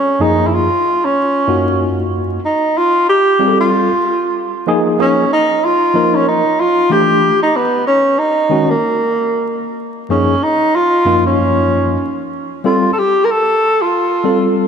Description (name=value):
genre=hip hop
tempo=94 BPM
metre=4/4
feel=swing 60% on 16ths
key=unclear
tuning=A4 = 440 Hz
part: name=breathy tenor saxophone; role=melody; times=0.0-14.7 s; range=A#3 to A#4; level=-13 LUFS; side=equal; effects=diffuse ambient delay
part: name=tine electric piano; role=accompaniment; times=0.2-14.7 s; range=F#2 to Bb4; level=-17 LUFS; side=equal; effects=overdrive, fast stereo tremolo
room=wet lush hall reverb, RT60 2.6 s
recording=dreamy mix soaked in reverb, vinyl crackle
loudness=-12 LUFS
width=side -7 dB against mid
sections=0.0-14.7 A section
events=none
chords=0.0 F#6; 2.4 F; 4.4 Fmadd11; 6.9 A5; 7.5 G#sus2; 10.1 F#6; 12.7 F